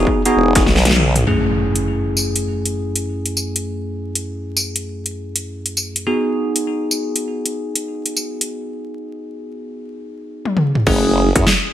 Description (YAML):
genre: glitch hop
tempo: 100 BPM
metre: 4/4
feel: swing 63% on 16ths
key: F# dorian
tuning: A4 = 440 Hz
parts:
  - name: bell-like tine electric piano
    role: stabs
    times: 0.0-11.5 s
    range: F#2 to G#4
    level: -20 LUFS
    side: equal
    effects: analog chorus, sidechain pumping, ping-pong delay
  - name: formant-sweep wobble bass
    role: bass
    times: 0.0-1.2, 10.9-11.4 s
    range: E1 to F#2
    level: -17 LUFS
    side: equal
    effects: chorus, tube saturation
  - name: electronic kick drum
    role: drums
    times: 0.1-0.6, 10.9-11.4 s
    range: none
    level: -18 LUFS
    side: equal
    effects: distortion, studio ambience
  - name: dubstep drum kit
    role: drums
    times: 0.3-11.6 s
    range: crash cymbal, hi-hat, rim click, snare drum, tambourine, toms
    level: -18 LUFS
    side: equal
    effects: studio ambience
  - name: impact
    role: sound effects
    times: 1.3-3.7 s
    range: none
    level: -25 LUFS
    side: equal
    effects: none
room: light reverb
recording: bright 1980s-style digital production, vinyl crackle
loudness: -16 LUFS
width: side -11 dB against mid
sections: 0.0-1.3 A section; 1.3-10.9 B section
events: drum fill 0.7-1.3, 10.4-10.9; band accent 0.9-1.2; impact 1.3-3.7; break 8.5-10.9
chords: 0.0 Emaj9; 1.3 F#m9; 6.1 G#m7; 10.9 F#m9